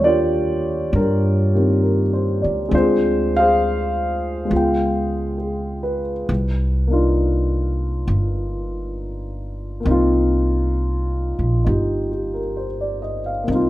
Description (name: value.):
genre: jazz ballad.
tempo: 67 BPM.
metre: 4/4.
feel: swing 69% on 8ths.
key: C minor.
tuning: A4 = 439 Hz.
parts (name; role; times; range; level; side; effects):
dark concert grand piano; accompaniment; 0.0-13.7 s; Eb3 to G5; -20 LUFS; equal; none.
upright bass; bass; 0.0-13.7 s; G1 to G2; -21 LUFS; equal; none.
room: moderate large studio reverb, RT60 1.1 s.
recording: none.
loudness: -17 LUFS.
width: side -15 dB against mid.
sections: 0.0-13.5 A section.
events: none.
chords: 0.0 Ebmaj9; 2.7 Dm7b5; 4.5 Db7#11; 6.3 Cm11.